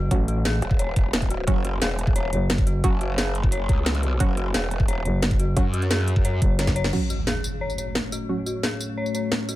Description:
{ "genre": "dark technical drum and bass", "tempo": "176 BPM", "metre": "4/4", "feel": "straight", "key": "F# minor", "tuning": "A4 = 440 Hz", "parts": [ { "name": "growling FM bass", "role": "bass", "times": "0.0-2.8, 5.1-6.9 s", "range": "F#1 to A1", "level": "-23 LUFS", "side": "equal", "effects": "none" }, { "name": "filtered dub chord stab", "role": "stabs", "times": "0.1-8.3 s", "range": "F#3 to F#4", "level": "-30 LUFS", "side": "right 3 dB", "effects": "chorus, ping-pong delay" }, { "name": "drum and bass drum kit", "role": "drums", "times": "0.1-9.6 s", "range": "crash cymbal, hi-hat, snare drum, tambourine", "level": "-27 LUFS", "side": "equal", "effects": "none" }, { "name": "electronic kick drum", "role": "drums", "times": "0.1-6.7 s", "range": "none", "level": "-22 LUFS", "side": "equal", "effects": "none" }, { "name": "dark detuned synth bell", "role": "arpeggios", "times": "0.3-9.6 s", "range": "F#4 to C#5", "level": "-31 LUFS", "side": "left 3 dB", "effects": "chorus, tremolo, sidechain pumping, low-pass filter, ping-pong delay" }, { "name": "growl bass", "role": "bass", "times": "0.6-6.4 s", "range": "E1 to F#2", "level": "-25 LUFS", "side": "equal", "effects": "distortion, chorus, tube saturation, sidechain pumping" }, { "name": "dark analog pad", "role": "sustained chords", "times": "7.5-9.6 s", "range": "A3 to C#5", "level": "-30 LUFS", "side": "left 2 dB", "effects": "chorus, sidechain pumping" }, { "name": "impact", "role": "sound effects", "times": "6.9-8.3 s", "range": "none", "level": "-30 LUFS", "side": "equal", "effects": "none" } ], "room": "little or no reverb", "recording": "none", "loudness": "-21 LUFS", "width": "side -15 dB against mid", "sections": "0.0-6.9 A section; 6.9-9.6 B section", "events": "drum fill 6.6-6.9; band accent 6.8; impact 6.9-8.3; filter sweep on synth bell 6.9-9.6", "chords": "0.0 F#5; 6.9 F#m" }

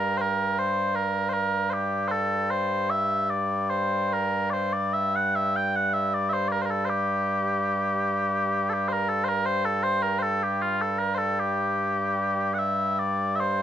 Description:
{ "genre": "celtic folk", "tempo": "72-81 BPM", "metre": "3/4", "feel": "rubato", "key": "G dorian", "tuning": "A4 = 440 Hz", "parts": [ { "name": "mellow small bagpipes", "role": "solo", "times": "0.0-13.6 s", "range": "G2 to G5", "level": "-23 LUFS", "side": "equal", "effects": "none" } ], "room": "light reverb", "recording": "band playing live in one room", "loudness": "-23 LUFS", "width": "side -10 dB against mid", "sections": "0.0-13.6 A section", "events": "none", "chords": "none" }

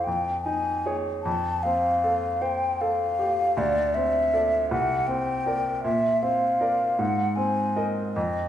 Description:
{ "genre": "classical, impressionist duo for flute and grand piano", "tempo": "52 BPM (dotted quarters)", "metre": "6/8", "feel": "rubato", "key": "unclear", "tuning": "A4 = 440 Hz", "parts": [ { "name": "mellow hollow concert flute", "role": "melody", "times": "0.0-8.5 s", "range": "D5 to A5", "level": "-24 LUFS", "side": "left 1 dB", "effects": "none" }, { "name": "clear baby grand piano", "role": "accompaniment", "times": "0.0-8.5 s", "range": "C2 to Eb5", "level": "-28 LUFS", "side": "right 1 dB", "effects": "none" } ], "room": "wet recital hall reverb, RT60 1.3 s", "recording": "minimal, uncompressed stereo recording", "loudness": "-22 LUFS", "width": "side -10 dB against mid", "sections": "0.0-8.5 A section", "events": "none", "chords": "0.1 C#add9/E#; 1.3 Fadd9; 3.6 Dsus2; 4.7 Csus2; 5.9 Bbadd9; 7.0 Abadd9" }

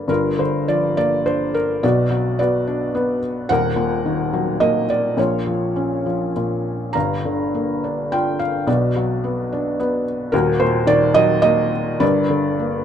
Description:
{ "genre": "classical, lyrical solo piano", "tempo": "98-111 BPM", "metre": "3/4", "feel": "rubato", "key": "unclear", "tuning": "A4 = 439 Hz", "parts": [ { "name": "felt-muted upright piano", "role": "solo", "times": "0.0-12.8 s", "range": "Eb1 to Bb5", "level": "-17 LUFS", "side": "equal", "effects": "none" } ], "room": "light reverb", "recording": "dark, warm production", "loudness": "-17 LUFS", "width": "side -8 dB against mid", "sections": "0.1-12.8 A section", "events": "felt piano fill 12.6", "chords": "0.1 Gm7; 1.8 Bm; 3.5 Ebm; 5.2 Bbm; 7.0 Gm7; 8.7 Bm; 10.3 Ebm; 12.0 Gm" }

